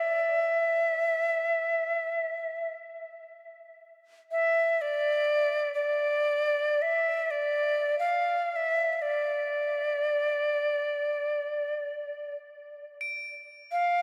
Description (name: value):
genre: world meditative, free-time meditation music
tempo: free time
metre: none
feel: none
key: unclear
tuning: A4 = 439 Hz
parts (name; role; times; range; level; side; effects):
- breathy bright Native American-style cedar flute; melody; 0.0-14.0 s; D5 to F5; -28 LUFS; equal; diffuse ambient delay
- crotales; texture; 0.0-0.6, 13.0-14.0 s; D7; -38 LUFS; equal; none
room: wet cathedral reverb, RT60 5.0 s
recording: none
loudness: -28 LUFS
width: mono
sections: 0.0-14.0 A section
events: none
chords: none